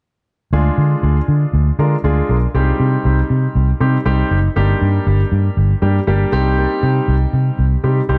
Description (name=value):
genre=pop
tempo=119 BPM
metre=4/4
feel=straight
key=C minor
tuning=A4 = 440 Hz
part: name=warm concert grand piano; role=accompaniment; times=0.5-8.2 s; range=G3 to Bb4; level=-22 LUFS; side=equal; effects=tape echo
part: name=vintage muted fingered electric bass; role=bass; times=0.5-8.2 s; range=F#1 to D3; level=-16 LUFS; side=equal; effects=none
room=light reverb, small room ambience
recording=echo-heavy mix, nothing above 10.4 kHz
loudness=-16 LUFS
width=mono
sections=0.5-8.2 A section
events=none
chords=0.5 Ddim; 2.5 Cm; 4.6 Gm; 6.3 Cm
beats=| 0.53 1.03 1.54 2.04 | 2.54 3.05 3.55 4.06 | 4.56 5.07 5.57 6.07 | 6.58 7.08 7.59 8.09